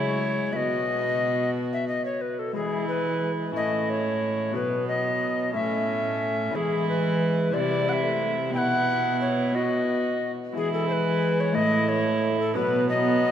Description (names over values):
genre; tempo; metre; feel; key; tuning
classical, renaissance-style consort dance; 60 BPM (dotted quarters); 6/8; straight; E major; A4 = 440 Hz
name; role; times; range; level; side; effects
tenor recorder; melody; 0.0-13.3 s; G#4 to G5; -26 LUFS; left 2 dB; none
warm viola; second line; 0.0-13.3 s; B3 to F#4; -30 LUFS; right 5 dB; none
Celtic harp; accompaniment; 0.0-13.3 s; A2 to B4; -32 LUFS; left 2 dB; none
mellow trombone; accompaniment; 0.0-13.3 s; F#3 to B3; -31 LUFS; equal; none
rich cello; bass; 0.0-13.3 s; A2 to E3; -30 LUFS; right 2 dB; none
room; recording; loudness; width
wet church reverb, RT60 3.0 s; none; -23 LUFS; side -9 dB against mid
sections
0.0-10.6 A section; 10.6-13.3 A section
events
none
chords
0.0 C#m; 0.5 B; 2.6 E; 3.6 A; 4.6 B; 5.5 A; 6.5 E; 7.5 C; 8.5 Bsus4; 9.5 B; 10.6 E; 11.6 A; 12.6 B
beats
| 0.54 1.55 | 2.56 3.56 | 4.55 5.55 | 6.54 7.54 | 8.54 9.54 | 10.56 11.56 | 12.56